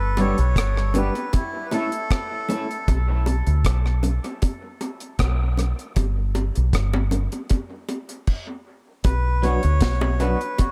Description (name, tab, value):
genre	dub reggae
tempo	78 BPM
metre	4/4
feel	straight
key	B minor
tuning	A4 = 438 Hz
part	melodica	melody	0.0-2.9, 9.0-10.7 s	E4 to C#5	-31 LUFS	equal	dub echo
part	deep dub fingered electric bass	bass	0.0-10.3 s	G1 to D2	-23 LUFS	equal	none
part	electric guitar at the edge of break-up	accompaniment	0.2-2.7, 9.4-10.4 s	F#3 to A4	-30 LUFS	equal	harmonic tremolo, dub echo
part	deep reggae drum kit	drums	0.2-10.7 s	crash cymbal, hi-hat, kick drum, rim click, snare drum	-26 LUFS	equal	none
part	bongos	percussion	0.2-10.7 s	none	-33 LUFS	equal	dub echo
room	light reverb, small room ambience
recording	echo-heavy mix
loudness	-22 LUFS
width	mono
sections	0.0-9.0 A section; 9.0-10.7 B section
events	none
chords	0.0 G; 1.3 A; 2.9 N.C.; 9.0 Bm